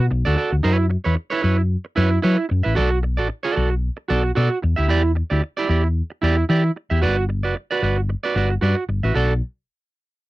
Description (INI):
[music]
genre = disco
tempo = 113 BPM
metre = 4/4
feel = swing 56% on 16ths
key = B minor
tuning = A4 = 437 Hz
[part]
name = clean electric guitar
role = accompaniment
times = 0.0-9.3 s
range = E4 to E5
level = -21 LUFS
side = right 4 dB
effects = none
[part]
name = hollow-body short-scale fingered electric bass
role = bass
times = 0.0-9.4 s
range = F#1 to F#3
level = -19 LUFS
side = left 1 dB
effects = none
[sound]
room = little or no reverb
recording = dry, close 1970s-style studio recording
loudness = -18 LUFS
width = side -18 dB against mid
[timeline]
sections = 0.6-9.2 A section; 9.2-10.3 B section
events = none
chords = 0.0 Bm7; 0.6 F#7sus4; 2.8 Bm7; 4.6 Em7; 7.0 Gmaj7; 9.2 Bm7